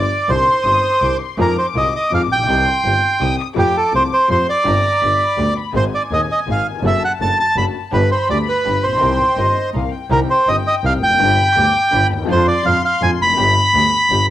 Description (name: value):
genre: tango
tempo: 165 BPM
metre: 3/4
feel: rubato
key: C minor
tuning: A4 = 441 Hz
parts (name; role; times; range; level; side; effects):
- bandoneon; melody; 0.0-14.3 s; G4 to B5; -15 LUFS; right 1 dB; cassette tape
- warm studio violin section; second line; 0.0-14.2 s; Eb5 to Eb6; -26 LUFS; left 8 dB; none
- warm upright piano; accompaniment; 0.0-14.3 s; Eb1 to Ab4; -25 LUFS; left 9 dB; none
- clear double bass; bass; 0.0-14.3 s; F1 to F2; -20 LUFS; right 1 dB; none
- dark studio string section; stabs; 1.4-14.3 s; Ab3 to Bb4; -31 LUFS; right 8 dB; none
room: light reverb, small room reverb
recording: home recording on cassette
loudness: -13 LUFS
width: side -12 dB against mid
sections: 0.0-10.1 A section; 10.1-14.3 B section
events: none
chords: 0.3 Cmadd9; 1.4 Fm7; 2.5 Cm; 3.6 Fadd9; 4.7 Gsus4; 5.0 G; 5.7 Abadd9; 6.8 D/F#; 7.9 G; 9.0 Cm7; 10.1 Cm; 11.2 G; 12.3 Ddim/F; 13.4 G